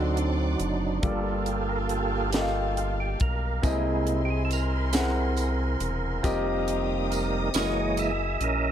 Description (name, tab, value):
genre	slow gospel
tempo	46 BPM (dotted quarters)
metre	6/8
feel	straight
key	unclear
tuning	A4 = 440 Hz
part	warm concert grand piano	accompaniment	0.0-8.7 s	G2 to Gb5	-29 LUFS	left 1 dB	none
part	percussive tonewheel organ	sustained chords	0.0-8.7 s	Fb3 to Fb5	-30 LUFS	right 5 dB	overdrive, chorus vibrato, stopped rotary speaker
part	warm symphonic string section	sustained chords	0.0-8.7 s	E4 to Eb6	-38 LUFS	left 2 dB	none
part	round analog bass	bass	0.0-8.7 s	E1 to D2	-29 LUFS	equal	none
part	tight funk drum kit	drums	0.2-8.6 s	hi-hat, kick drum, snare drum	-29 LUFS	equal	none
part	tambourine	percussion	3.6-8.4 s	none	-38 LUFS	right 10 dB	none
room	studio reverb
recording	none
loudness	-24 LUFS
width	side -10 dB against mid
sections	0.0-8.7 A section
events	tonewheel organ solo 0.0-8.7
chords	0.0 D7b9; 1.0 Gm9; 3.6 C7alt; 6.2 F9sus4; 7.5 Gb13